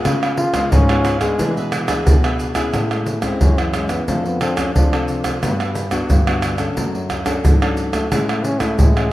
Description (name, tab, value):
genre	samba and choro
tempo	89 BPM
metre	4/4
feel	straight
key	A major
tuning	A4 = 441 Hz
part	warm trombone	melody	0.0-9.1 s	E3 to E#4	-23 LUFS	equal	none
part	cavaquinho	accompaniment	0.0-2.7 s	D4 to E#5	-30 LUFS	right 2 dB	none
part	nylon-string guitar	accompaniment	0.0-9.1 s	G#2 to A4	-23 LUFS	left 3 dB	none
part	nylon-string guitar	bass	0.1-9.1 s	F2 to F3	-24 LUFS	equal	none
part	tube shaker, surdo, pandeiro and tamborim	percussion	0.1-9.1 s	none	-18 LUFS	equal	none
room	light reverb, studio ambience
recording	rough home demo mix, vinyl crackle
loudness	-15 LUFS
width	side -16 dB against mid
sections	0.0-2.7 A section; 2.7-9.1 B section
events	trombone solo 2.7-9.1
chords	0.0 C#7; 1.4 E7; 2.7 Amaj7; 4.1 F6; 5.4 Gmaj7; 6.8 Dmaj7/F#; 8.1 Amaj7